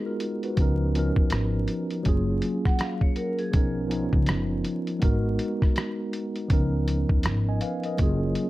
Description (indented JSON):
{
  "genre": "lo-fi hip hop",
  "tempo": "81 BPM",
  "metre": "4/4",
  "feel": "swing 60% on 16ths",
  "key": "unclear",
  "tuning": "A4 = 441 Hz",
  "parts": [
    { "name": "mellow tine electric piano", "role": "accompaniment", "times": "0.0-8.5 s", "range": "E#3 to G#5", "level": "-27 LUFS", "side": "equal", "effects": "medium stereo tremolo, low-pass filter" },
    { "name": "lo-fi sampler-style drum kit", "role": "drums", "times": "0.2-8.5 s", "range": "hi-hat, kick drum, rim click", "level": "-24 LUFS", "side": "equal", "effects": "none" },
    { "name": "upright bass", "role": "bass", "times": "0.6-8.3 s", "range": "F#1 to D#2", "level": "-27 LUFS", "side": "equal", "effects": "none" },
    { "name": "vibraphone with hard mallets", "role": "second line", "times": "2.7-3.7 s", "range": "G#4 to F#5", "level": "-34 LUFS", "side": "right 1 dB", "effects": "low-pass filter, analog delay" }
  ],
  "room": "light reverb",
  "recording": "dark, warm production, vinyl crackle",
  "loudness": "-23 LUFS",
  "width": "side -17 dB against mid",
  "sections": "0.0-8.5 A section",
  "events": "none",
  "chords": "0.0 G#m9; 0.6 C#13; 2.1 F#maj9; 3.5 Bmaj9#11; 5.0 G#m9; 6.5 C#13; 8.0 F#maj9"
}